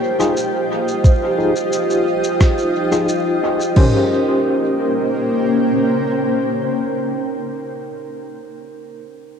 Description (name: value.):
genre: ambient dub.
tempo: 88 BPM.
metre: 4/4.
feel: straight.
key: Bb dorian.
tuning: A4 = 439 Hz.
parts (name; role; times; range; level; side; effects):
granular cloud pad; sustained chords; 0.0-7.2 s; Bb3 to G5; -20 LUFS; left 1 dB; built-in reverb.
vibraphone with hard mallets; arpeggios; 0.0-9.0 s; Eb4 to C5; -23 LUFS; right 3 dB; low-pass filter, tape echo.
overdriven tine electric piano; stabs; 0.2-6.8 s; Db4 to C5; -22 LUFS; left 1 dB; fast tremolo, low-pass filter, dub echo.
electronic shaker and rim click; drums; 0.2-3.7 s; none; -28 LUFS; left 1 dB; overdrive, dub echo.
organic electronic drum kit; drums; 1.0-3.9 s; crash cymbal, kick drum, toms; -12 LUFS; equal; none.
room: moderate echo chamber reverb, RT60 2.3 s.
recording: dark, warm production.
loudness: -15 LUFS.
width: side -7 dB against mid.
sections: 0.0-3.8 A section; 3.8-6.5 B section.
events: filter sweep on tine electric piano 0.0-3.8; filter sweep on vibraphone 0.0-3.8.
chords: 0.0 F7(no3); 3.8 Bbm69.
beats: 0.36 | 1.04 1.72 2.40 3.09 | 3.77 4.45 5.13 5.81.